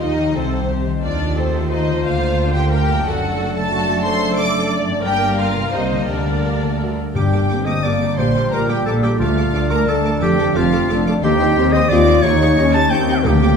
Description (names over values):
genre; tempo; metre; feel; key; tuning
classical; 178 BPM; 3/4; rubato; Bb major, G minor from 3.1 s; A4 = 439 Hz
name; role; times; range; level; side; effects
rich symphonic violin section; melody; 0.0-13.5 s; C5 to D6; -26 LUFS; left 1 dB; none
bright symphonic violin section; second line; 0.0-13.6 s; C4 to A6; -27 LUFS; equal; none
rich symphonic viola section; accompaniment; 0.0-13.5 s; A3 to D5; -26 LUFS; right 1 dB; none
mellow French horn section; sustained chords; 0.0-13.6 s; G3 to G4; -22 LUFS; left 2 dB; none
concert harp; arpeggios; 0.0-13.6 s; F#2 to Db5; -24 LUFS; left 4 dB; none
rich symphonic cello section; bass; 0.0-13.6 s; D2 to Eb3; -24 LUFS; right 2 dB; none
rich symphonic double bass section; bass; 0.0-13.6 s; F1 to Eb2; -22 LUFS; right 3 dB; none
clear clarinet; second line; 7.2-13.6 s; F4 to A5; -19 LUFS; equal; none
timpani; percussion; 7.2-7.6, 13.2-13.6 s; G2 to D3; -21 LUFS; left 2 dB; none
room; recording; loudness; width
wet recital hall reverb, RT60 1.6 s; heard from further back in the room; -15 LUFS; side -6 dB against mid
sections
0.0-7.2 A section; 7.2-13.6 B section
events
none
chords
0.0 Eb6; 1.0 F7/Eb; 2.0 Bb/D; 3.1 D/F#; 5.1 Gm; 5.7 Cm7; 6.1 Gm/D; 6.8 D; 7.2 Gm; 8.2 Gm/Bb; 9.2 Dm; 10.2 Dm/F; 11.2 Cm/Eb; 12.2 Eb7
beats
| 0.01 0.35 0.69 | 1.03 1.37 1.71 | 2.04 2.38 2.72 | 3.06 3.39 3.72 | 4.05 4.38 4.72 | 5.05 5.39 5.73 | 6.08 6.44 6.80 | 7.15 7.49 7.83 | 8.18 8.52 8.86 | 9.20 9.54 9.88 | 10.22 10.56 10.89 | 11.23 11.57 11.90 | 12.24 12.57 12.91 | 13.24